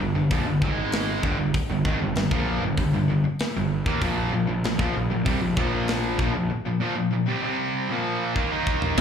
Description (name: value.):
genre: heavy metal.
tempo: 97 BPM.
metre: 4/4.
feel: straight.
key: unclear.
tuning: A4 = 440 Hz.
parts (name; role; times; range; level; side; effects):
distorted electric guitar; riff; 0.0-9.0 s; D2 to Eb4; -26 LUFS; right 7 dB; distortion.
tight distorted guitar; riff; 0.0-9.0 s; D2 to Eb4; -28 LUFS; left 10 dB; distortion, slapback echo.
fuzz picked electric bass; bass; 0.0-9.0 s; D1 to Eb2; -28 LUFS; equal; overdrive.
tight metal drum kit; drums; 0.3-9.0 s; crash cymbal, hi-hat, kick drum, snare drum, toms; -28 LUFS; equal; none.
room: studio ambience.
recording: live gig heard through the venue's PA, club reverb.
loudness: -22 LUFS.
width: side -7 dB against mid.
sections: 0.0-9.0 A section.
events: drum fill 8.4-9.0.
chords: 0.0 G5; 0.6 G#5; 1.2 G5; 4.0 Bb5.